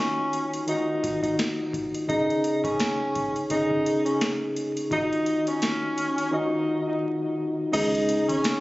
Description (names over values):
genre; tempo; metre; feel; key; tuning
hip hop, boom-bap hip-hop; 85 BPM; 4/4; swing 57% on 16ths; Eb minor; A4 = 440 Hz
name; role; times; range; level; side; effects
mellow tenor saxophone; melody; 0.0-8.6 s; Db4 to Eb4; -28 LUFS; equal; high-pass filter, low-pass filter, digital delay
mellow tine electric piano; accompaniment; 0.0-8.6 s; Db3 to Ab4; -26 LUFS; equal; fast stereo tremolo, cassette tape, high-pass filter, low-pass filter
booming analog drum machine; drums; 0.3-8.6 s; crash cymbal, hi-hat, kick drum, snare drum; -31 LUFS; equal; none
round analog bass; bass; 7.7-8.4 s; Ab1 to Db2; -31 LUFS; equal; none
room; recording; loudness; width
light reverb, digital ambience; recorded on a phone in the room, studio reverb, vinyl crackle, compression, nothing above 7.8 kHz; -23 LUFS; side -19 dB against mid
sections
0.0-7.7 A section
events
kick muted 7.7-8.6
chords
0.0 Ebmadd9; 2.1 Dbsus2; 4.9 Ebmadd9; 7.7 Dbsus2